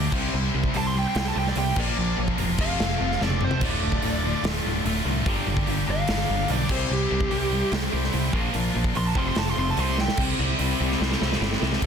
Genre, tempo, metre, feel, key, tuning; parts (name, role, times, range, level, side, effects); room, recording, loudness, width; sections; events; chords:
hard rock; 146 BPM; 4/4; straight; A4 = 441 Hz
distorted electric guitar; riff; 0.0-11.9 s; D2 to C4; -28 LUFS; equal; distortion
heavy high-gain guitar; riff; 0.0-11.9 s; D2 to C5; -29 LUFS; left 1 dB; distortion
picked electric bass; bass; 0.0-11.9 s; D1 to C2; -28 LUFS; equal
big rock drum kit; drums; 0.1-11.9 s; crash cymbal, hi-hat, kick drum, snare drum, splash cymbal, toms; -28 LUFS; equal
bluesy overdriven lead guitar; melody; 0.8-10.2 s; G4 to C6; -29 LUFS; right 2 dB; distortion, slapback echo
overdriven tonewheel organ; sustained chords; 3.6-11.9 s; F3 to D5; -38 LUFS; equal
small room ambience; dense, heavily limited modern master; -22 LUFS; side -7 dB against mid
0.0-10.2 A section; 10.2-11.8 B section
lead electric guitar solo 0.0-10.2; drum fill 3.2-3.6, 10.0, 11.0-11.8
0.1 C; 1.8 Bb; 2.6 F; 3.6 Dm; 5.3 Gm; 6.7 C; 8.3 Bb; 9.2 F; 9.8 C